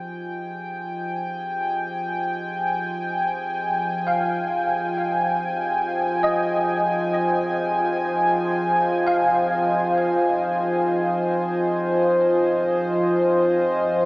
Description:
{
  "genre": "ambient",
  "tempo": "free time",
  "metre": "none",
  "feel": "none",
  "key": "F minor",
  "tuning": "A4 = 440 Hz",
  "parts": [
    { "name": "warm analog pad", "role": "sustained chords", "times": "0.0-14.1 s", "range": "F4 to Ab5", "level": "-21 LUFS", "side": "equal", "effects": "chorus" },
    { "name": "tine electric piano", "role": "arpeggios", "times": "0.0-14.1 s", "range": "Eb5 to F5", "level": "-26 LUFS", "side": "equal", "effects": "ensemble chorus, tape echo" },
    { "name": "analog drone", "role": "drone", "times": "0.0-14.1 s", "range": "F3", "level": "-29 LUFS", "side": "equal", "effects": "chorus, phaser" }
  ],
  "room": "wet huge ambient reverb, RT60 8.2 s",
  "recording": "small speaker sound",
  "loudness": "-20 LUFS",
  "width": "side -22 dB against mid",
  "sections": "0.0-14.1 A section",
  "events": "fade-in on analog synth pad 0.0-14.1; fade-in on tine electric piano 0.0-14.1; fade-in on synth drone 0.0-14.1",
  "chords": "0.0 Fm7"
}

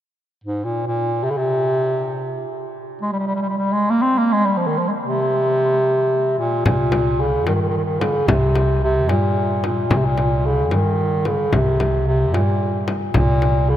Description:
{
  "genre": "Persian modal ensemble",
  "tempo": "74 BPM (dotted quarters)",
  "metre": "6/8",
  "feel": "straight",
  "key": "C dastgah shur",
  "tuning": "A4 = 440 Hz",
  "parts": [
    { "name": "warm bass clarinet", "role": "melody", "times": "0.4-13.8 s", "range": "Ab2 to C4", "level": "-18 LUFS", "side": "equal", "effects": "none" },
    { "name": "upright bass", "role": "bass", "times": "6.7-13.8 s", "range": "C2 to G2", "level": "-20 LUFS", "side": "equal", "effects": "none" },
    { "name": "frame drum", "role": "percussion", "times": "6.7-13.5 s", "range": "none", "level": "-24 LUFS", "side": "left 2 dB", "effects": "none" }
  ],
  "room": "wet cathedral reverb, RT60 6.5 s",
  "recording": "in a vast, echoing space",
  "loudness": "-17 LUFS",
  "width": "side -11 dB against mid",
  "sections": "0.1-6.6 A section; 6.6-13.8 B section",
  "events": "none",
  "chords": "none"
}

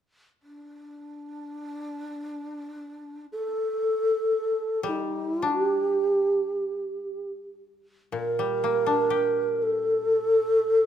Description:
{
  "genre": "japanese traditional, Japanese chamber music",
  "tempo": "free time",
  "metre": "none",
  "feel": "none",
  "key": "G hirajoshi",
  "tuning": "A4 = 440 Hz",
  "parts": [
    { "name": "mellow hollow long shakuhachi", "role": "melody", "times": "0.4-10.9 s", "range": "D4 to Bb4", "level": "-25 LUFS", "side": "right 1 dB", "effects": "none" },
    { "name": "koto", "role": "accompaniment", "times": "4.8-10.9 s", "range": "Bb2 to G4", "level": "-30 LUFS", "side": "left 4 dB", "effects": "none" }
  ],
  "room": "moderate recital hall reverb, RT60 1.8 s",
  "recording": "minimal, uncompressed stereo recording",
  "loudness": "-23 LUFS",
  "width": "side -9 dB against mid",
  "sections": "0.0-8.1 A section; 8.1-10.9 B section",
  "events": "none",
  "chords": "none"
}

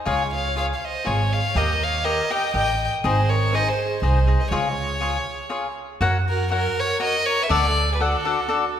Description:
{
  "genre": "mexican folk, mariachi",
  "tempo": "121 BPM",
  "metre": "3/4",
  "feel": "straight",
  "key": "Db major",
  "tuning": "A4 = 440 Hz",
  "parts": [
    { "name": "warm violin", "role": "melody", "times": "0.1-8.7 s", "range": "A4 to G5", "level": "-24 LUFS", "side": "equal", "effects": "none" },
    { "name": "dark studio violin section", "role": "second line", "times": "0.1-8.7 s", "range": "F#4 to Eb5", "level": "-30 LUFS", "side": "right 1 dB", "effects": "none" },
    { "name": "cavaquinho", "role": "accompaniment", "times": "0.1-8.6 s", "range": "D4 to G5", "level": "-25 LUFS", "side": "left 3 dB", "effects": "none" },
    { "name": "upright bass", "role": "bass", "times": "0.1-8.1 s", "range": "Ab1 to F#2", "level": "-23 LUFS", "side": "right 1 dB", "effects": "none" }
  ],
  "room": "wet scoring stage reverb, RT60 1.9 s",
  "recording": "recorded in a church or concert hall",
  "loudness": "-19 LUFS",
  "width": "side -9 dB against mid",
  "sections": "0.0-6.0 A section; 6.0-8.8 B section",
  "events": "break 5.5-6.0",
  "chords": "0.1 Db; 1.6 Eb; 3.0 Ab; 4.5 Db; 6.0 F#; 7.5 D"
}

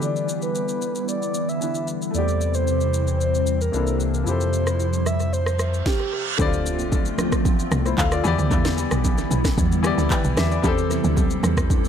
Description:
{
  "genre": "amapiano",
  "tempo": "113 BPM",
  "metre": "4/4",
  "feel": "straight",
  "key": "D dorian",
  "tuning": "A4 = 440 Hz",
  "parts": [
    { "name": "breathy flute-like synth lead", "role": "melody", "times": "0.0-6.2 s", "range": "G4 to E5", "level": "-27 LUFS", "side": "equal", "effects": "chorus, low-pass filter, analog delay" },
    { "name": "clear concert grand piano", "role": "accompaniment", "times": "0.0-11.9 s", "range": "C3 to G5", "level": "-27 LUFS", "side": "left 6 dB", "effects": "analog delay" },
    { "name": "hollow soft pad", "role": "sustained chords", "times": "0.0-11.9 s", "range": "C3 to A4", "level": "-26 LUFS", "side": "equal", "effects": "ensemble chorus, sidechain pumping, low-pass filter" },
    { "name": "afro-pop drum kit", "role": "drums", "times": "0.0-11.9 s", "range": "handclaps, kick drum, rim click, shaker, snare drum", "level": "-24 LUFS", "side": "equal", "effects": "analog delay" },
    { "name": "sub bass with octave", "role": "bass", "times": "2.1-5.8 s", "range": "C2 to F2", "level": "-23 LUFS", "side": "equal", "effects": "none" },
    { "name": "reverse cymbal and impact", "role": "sound effects", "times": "5.7-8.5 s", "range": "none", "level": "-31 LUFS", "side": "right 4 dB", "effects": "none" },
    { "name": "woody log drum bass", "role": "bass", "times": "6.4-11.9 s", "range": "B1 to E2", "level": "-24 LUFS", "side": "equal", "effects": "none" },
    { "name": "congas", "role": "percussion", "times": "6.4-11.8 s", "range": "none", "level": "-30 LUFS", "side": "right 5 dB", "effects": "analog delay" }
  ],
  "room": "digital ambience",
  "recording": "echo-heavy mix",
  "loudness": "-19 LUFS",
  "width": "side -8 dB against mid",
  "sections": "0.0-6.4 A section; 6.4-11.9 B section",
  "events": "filter sweep 0.0-6.4; reverse cymbal 5.7-6.4; drop 6.4-11.9; impact 6.4-8.5",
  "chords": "0.0 Em7; 2.1 Am7/E; 3.7 C13; 4.3 Fmaj9; 6.4 Dm7; 8.2 Em7; 10.6 Am7"
}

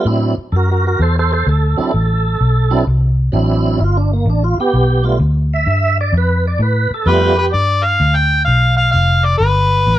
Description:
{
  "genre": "electric blues shuffle",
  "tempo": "128 BPM",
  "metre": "4/4",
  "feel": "swing 67% on 8ths",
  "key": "G mixolydian",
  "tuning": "A4 = 440 Hz",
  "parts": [
    { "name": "tonewheel organ", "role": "accompaniment", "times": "0.0-7.5 s", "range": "F#3 to E5", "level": "-17 LUFS", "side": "right 3 dB", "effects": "overdrive, chorus vibrato, slow rotary speaker" },
    { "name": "vintage muted fingered electric bass", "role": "bass", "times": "0.1-10.0 s", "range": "F1 to A2", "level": "-14 LUFS", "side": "equal", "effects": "none" },
    { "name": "overdriven harmonica", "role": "melody", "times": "7.1-10.0 s", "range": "B4 to G5", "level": "-14 LUFS", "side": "left 1 dB", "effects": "none" }
  ],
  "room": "light reverb",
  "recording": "band playing live in one room",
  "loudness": "-12 LUFS",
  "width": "side -13 dB against mid",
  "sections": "0.0-7.5 A section; 7.5-10.0 B section",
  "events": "none",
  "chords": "0.1 D9; 3.8 G9; 7.5 G7"
}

